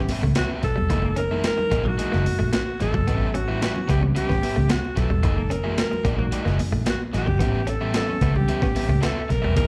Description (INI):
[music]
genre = funk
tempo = 111 BPM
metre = 4/4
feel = straight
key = unclear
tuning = A4 = 439 Hz
[part]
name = breathy alto saxophone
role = melody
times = 0.0-9.7 s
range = F#4 to A#4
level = -30 LUFS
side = equal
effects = none
[part]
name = direct-recorded clean electric guitar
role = riff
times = 0.0-9.7 s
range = F#3 to C#4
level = -35 LUFS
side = equal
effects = subtle chorus, slapback echo
[part]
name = mellow tine electric piano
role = stabs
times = 0.0-9.7 s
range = E3 to F#4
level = -33 LUFS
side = equal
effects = none
[part]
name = vintage muted fingered electric bass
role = bass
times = 0.0-9.7 s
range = E1 to C#2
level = -26 LUFS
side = equal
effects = none
[part]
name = crunchy overdriven guitar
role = accompaniment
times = 0.1-9.7 s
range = A#3 to E5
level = -34 LUFS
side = equal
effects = slapback echo
[part]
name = breakbeat sampler-style drum kit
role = drums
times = 0.1-9.7 s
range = hi-hat, kick drum, snare drum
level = -29 LUFS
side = equal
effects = none
[part]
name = congas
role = percussion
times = 0.1-9.7 s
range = none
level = -36 LUFS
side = equal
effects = none
[sound]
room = little or no reverb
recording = live gig heard through the venue's PA, club reverb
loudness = -23 LUFS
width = mono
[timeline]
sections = 0.0-9.7 A section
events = none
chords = 0.0 A9; 0.9 F#13; 3.1 A9; 5.2 F#13; 7.4 A9